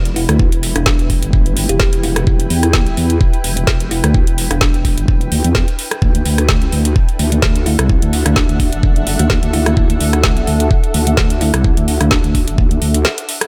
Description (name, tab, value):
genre	bass house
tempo	128 BPM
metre	4/4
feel	swing 54% on 16ths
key	unclear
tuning	A4 = 440 Hz
part	vowel-sweep wobble bass	bass	0.0-13.1 s	E1 to E2	-18 LUFS	equal	chorus, tube saturation, sidechain pumping
part	granular cloud pad	texture	0.0-13.5 s	D4 to G5	-27 LUFS	equal	built-in reverb, sidechain pumping
part	garage drum kit	drums	0.1-13.5 s	hi-hat, rim click, snare drum	-21 LUFS	equal	none
part	kalimba	melody	0.2-4.7, 7.7-12.2 s	D4 to G4	-27 LUFS	equal	digital delay
part	electronic kick drum	drums	0.4-12.7 s	none	-17 LUFS	equal	none
room	little or no reverb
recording	none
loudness	-14 LUFS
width	mono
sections	0.0-13.5 A section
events	break 13.1-13.5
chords	0.0 Em; 6.0 Dadd9